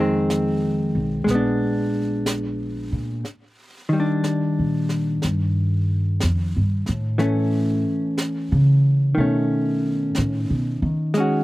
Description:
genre	jazz ballad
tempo	61 BPM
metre	4/4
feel	swing 68% on 8ths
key	unclear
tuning	A4 = 440 Hz
part	vintage hollow-body jazz guitar	accompaniment	0.0-11.4 s	Eb3 to F#4	-22 LUFS	equal	none
part	upright bass	bass	0.0-11.4 s	Bb1 to D#3	-22 LUFS	equal	none
part	jazz brush drum kit	drums	0.3-11.4 s	brushed snare drum, hi-hat, snare drum	-32 LUFS	right 1 dB	none
room	little or no reverb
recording	recorded outdoors, with no room sound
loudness	-19 LUFS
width	side -18 dB against mid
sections	0.0-3.3 A section; 3.3-11.4 A section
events	upright bass solo 3.3-11.4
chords	0.0 Fm7; 1.3 Bb7b9; 3.3 Ebmaj7; 7.2 A; 9.2 B9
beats	0.29 1.28 2.26 | 3.25 4.24 5.22 6.21 | 7.19 8.18 9.16 10.15 | 11.13

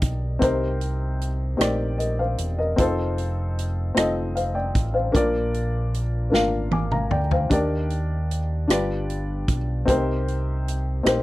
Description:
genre	slow gospel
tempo	51 BPM (dotted quarters)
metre	6/8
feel	straight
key	unclear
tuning	A4 = 440 Hz
part	dark baby grand piano	accompaniment	0.0-11.2 s	G2 to D6	-24 LUFS	left 2 dB	none
part	fingered electric bass	bass	0.0-11.2 s	Fb1 to Eb2	-26 LUFS	equal	none
part	natural country drum kit	drums	0.0-11.2 s	hi-hat, kick drum, rim click, snare drum, toms	-24 LUFS	right 1 dB	none
room	little or no reverb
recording	dry, close 1970s-style studio recording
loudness	-21 LUFS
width	side -17 dB against mid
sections	0.0-11.2 A section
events	drum fill 6.3-7.5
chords	0.4 Cm7; 2.8 F7; 5.2 Bb; 7.5 Ebmaj7; 8.7 G7; 9.9 Cm7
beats	| 0.42 1.60 | 2.79 3.97 | 5.15 6.33 | 7.52 8.70 | 9.88 11.06

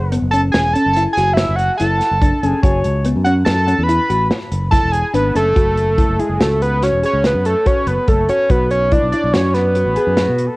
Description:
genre	progressive instrumental, band music in an uneven meter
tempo	143 BPM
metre	7/4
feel	straight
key	F# minor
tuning	A4 = 440 Hz
part	warm flugelhorn	second line	0.0-3.1, 9.9-10.6 s	F#4 to C#5	-25 LUFS	left 2 dB	cassette tape, plate reverb
part	fingered electric bass	bass	0.0-10.5 s	E1 to B2	-19 LUFS	equal	none
part	thumb-piano-like synth pluck	arpeggios	0.1-10.3 s	B3 to A4	-22 LUFS	left 1 dB	chorus, cassette tape, plate reverb
part	modern studio drum kit	drums	0.1-10.5 s	hi-hat, kick drum, snare drum	-18 LUFS	equal	cassette tape
part	fat analog lead	melody	0.3-10.6 s	G#4 to B5	-17 LUFS	equal	cassette tape, plate reverb, tape echo
room	light reverb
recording	home recording on cassette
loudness	-13 LUFS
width	side -22 dB against mid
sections	0.0-5.6 A section; 5.6-10.6 B section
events	analog synth lead solo 0.0-5.6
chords	0.0 F#madd9; 2.6 F#m7; 5.6 F#m; 8.5 B5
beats	0.13 0.55 0.97 1.38 1.80 2.22 | 2.64 3.06 3.47 3.89 4.31 4.73 5.15 | 5.57 5.99 6.40 6.82 7.24 7.66 8.08 | 8.50 8.92 9.34 9.76 10.18

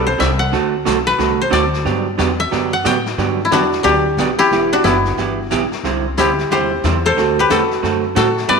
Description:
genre	country, western swing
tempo	181 BPM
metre	4/4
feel	swing 63% on 8ths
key	G major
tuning	A4 = 444 Hz
part	koto	melody	0.0-8.6 s	B3 to G5	-16 LUFS	left 3 dB	none
part	vintage hollow-body jazz guitar	accompaniment	0.0-8.6 s	C3 to C5	-18 LUFS	right 9 dB	none
part	upright bass	bass	0.0-8.6 s	E1 to A2	-23 LUFS	left 2 dB	none
part	vintage brush drum kit	drums	0.2-8.6 s	brushed snare drum, hi-hat, snare drum	-26 LUFS	left 10 dB	none
room	moderate echo chamber reverb, RT60 1.8 s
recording	1960s-style stereo with parts hard left and right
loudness	-14 LUFS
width	side -5 dB against mid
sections	0.0-3.2 A section; 3.2-8.6 B section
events	koto solo 0.0-3.2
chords	0.0 Csus2; 0.5 D7; 1.9 Gmaj7; 4.5 Em; 5.8 Cadd9; 7.2 D7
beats	0.20 | 0.53 0.86 1.19 1.52 | 1.85 2.19 2.52 2.85 | 3.18 3.52 3.85 4.18 | 4.51 4.84 5.18 5.51 | 5.84 6.17 6.50 6.83 | 7.17 7.50 7.83 8.16 | 8.49

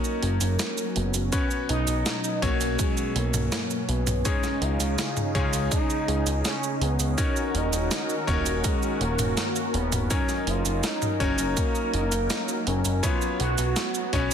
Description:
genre	synthwave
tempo	82 BPM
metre	4/4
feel	straight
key	unclear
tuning	A4 = 439 Hz
part	expressive synth lead	melody	0.0-14.3 s	Ab3 to F#4	-30 LUFS	equal	lush chorus, ping-pong delay
part	warm analog pad	sustained chords	0.0-14.3 s	B2 to Bb4	-31 LUFS	equal	chorus, sidechain pumping
part	bright electric grand piano	stabs	0.0-14.3 s	F#3 to Db5	-32 LUFS	left 5 dB	vintage 12-bit sampler grit, tape echo
part	clean 12-bit digital drum machine	drums	0.0-14.3 s	hi-hat, shaker, snare drum, toms	-30 LUFS	right 2 dB	none
part	fat analog bass	bass	0.2-14.3 s	Eb1 to Db2	-27 LUFS	equal	sidechain pumping
part	electronic kick drum	drums	1.3-14.3 s	none	-28 LUFS	equal	none
room	moderate plate reverb, RT60 2.0 s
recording	dense, heavily limited modern master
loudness	-23 LUFS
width	side -8 dB against mid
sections	0.0-14.3 A section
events	none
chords	0.0 Gb6; 1.3 Bsus2; 4.3 Dbsus2; 7.2 Ebm7; 10.1 Gb6; 13.0 Bsus2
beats	0.59 | 1.32 2.06 2.79 3.52 | 4.25 4.98 5.71 6.45 | 7.18 7.91 8.64 9.37 | 10.11 10.84 11.57 12.30 | 13.03 13.76

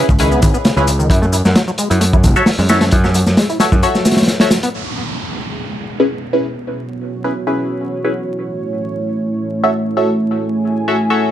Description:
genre	breakbeat, breaks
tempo	132 BPM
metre	4/4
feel	swing 54% on 16ths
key	C# minor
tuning	A4 = 439 Hz
part	overdriven acid bass	riff	0.0-4.7 s	C#3 to F#4	-20 LUFS	equal	analog chorus, tape echo
part	band-passed chord stab	stabs	0.0-11.3 s	C#4 to E5	-17 LUFS	left 1 dB	phaser, tape echo
part	overdriven picked electric bass	bass	0.1-3.8 s	F#1 to F#2	-15 LUFS	equal	none
part	crunchy breakbeat drum kit	drums	0.1-4.7 s	hi-hat, kick drum, snare drum	-14 LUFS	equal	none
part	shaker	drums	0.1-4.7 s	none	-28 LUFS	left 4 dB	overdrive, low-pass filter on perc, low-pass filter on room
part	dark analog pad	sustained chords	4.7-11.3 s	A3 to G#5	-19 LUFS	right 1 dB	chorus, sidechain pumping
part	downlifter	sound effects	4.7-8.4 s	none	-27 LUFS	right 2 dB	none
room	small room ambience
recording	vinyl crackle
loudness	-13 LUFS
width	side -11 dB against mid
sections	0.0-4.7 A section; 4.7-11.3 B section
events	filter sweep on synth stab 4.7-11.3; filter sweep on analog synth pad 4.7-11.3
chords	0.0 C#m7; 1.1 F#m7; 4.7 C#m7; 8.4 F#m7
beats	0.20 0.65 | 1.10 1.56 2.01 2.47 | 2.92 3.38 3.83 4.29 | 4.74 5.20 5.65 6.10 | 6.56 7.01 7.47 7.92 | 8.38 8.83 9.29 9.74 | 10.20 10.65 11.10

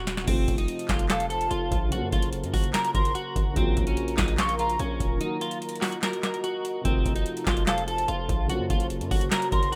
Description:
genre	hip hop, trap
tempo	146 BPM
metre	4/4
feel	half-time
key	unclear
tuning	A4 = 440 Hz
part	clean electric guitar	melody	0.0-9.8 s	C4 to Bb4	-35 LUFS	equal	analog chorus, digital delay
part	distorted 808-style bass	bass	0.0-9.7 s	Eb1 to Gb2	-34 LUFS	equal	distortion
part	booming analog drum machine	drums	0.1-9.8 s	crash cymbal, handclaps, hi-hat, kick drum, snare drum	-29 LUFS	equal	none
part	dark concert grand piano	accompaniment	0.2-9.8 s	C3 to Gb4	-36 LUFS	equal	none
part	glassy FM pad	sustained chords	0.8-9.8 s	F4 to Bb5	-36 LUFS	equal	ensemble chorus, built-in reverb
part	breathy mellow silver concert flute	second line	1.1-4.8, 7.7-9.7 s	F5 to Db6	-32 LUFS	equal	digital delay
room	digital ambience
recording	rough home demo mix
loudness	-26 LUFS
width	mono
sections	0.3-9.8 A section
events	drum fill 0.0; break 5.2-6.9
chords	0.3 F; 1.9 Gb; 3.6 Bbm; 5.2 Ebm; 6.9 F; 8.5 Gb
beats	| 0.28 0.69 1.10 1.51 | 1.92 2.33 2.74 3.15 | 3.56 3.97 4.38 4.80 | 5.21 5.62 6.03 6.44 | 6.85 7.26 7.67 8.08 | 8.49 8.91 9.32 9.73

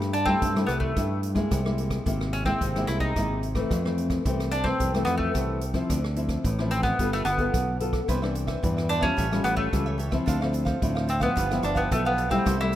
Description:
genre	samba and choro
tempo	110 BPM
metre	4/4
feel	straight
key	C major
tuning	A4 = 440 Hz
part	nylon-string guitar	accompaniment	0.0-12.8 s	F2 to A4	-28 LUFS	left 2 dB	none
part	fingered electric bass	bass	0.0-12.8 s	G1 to G2	-28 LUFS	equal	none
part	swinging big-band drum kit	drums	0.0-12.8 s	hi-hat, kick drum, rim click	-31 LUFS	right 1 dB	none
part	mandolin	melody	0.1-12.8 s	A3 to E4	-27 LUFS	equal	none
part	cavaquinho	accompaniment	8.1-12.8 s	D4 to F5	-34 LUFS	right 3 dB	none
room	light reverb, studio reverb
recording	rough home demo mix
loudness	-23 LUFS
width	side -12 dB against mid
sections	0.0-12.8 A section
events	none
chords	0.0 C6; 1.5 Caug7; 3.7 Fmaj7; 5.9 Dm9; 7.0 G9; 8.1 Cmaj9; 9.2 A7b13; 10.3 Dm9; 11.4 G13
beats	0.42 0.97 | 1.51 2.06 2.61 3.16 | 3.71 4.25 4.80 5.35 | 5.90 6.44 6.99 7.54 | 8.09 8.63 9.18 9.73 | 10.27 10.82 11.37 11.91 | 12.46

